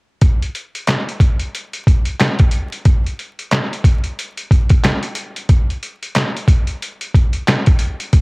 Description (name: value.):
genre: hip hop.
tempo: 91 BPM.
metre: 4/4.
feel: swing 61% on 16ths.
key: none.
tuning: none.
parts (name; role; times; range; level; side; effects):
trip hop sampler-style drum kit; drums; 0.2-8.2 s; handclaps, hi-hat, kick drum, snare drum; -13 LUFS; equal; cassette tape.
room: little or no reverb.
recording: home recording on cassette, vinyl crackle.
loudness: -14 LUFS.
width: side -29 dB against mid.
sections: 0.2-8.2 A section.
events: none.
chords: none.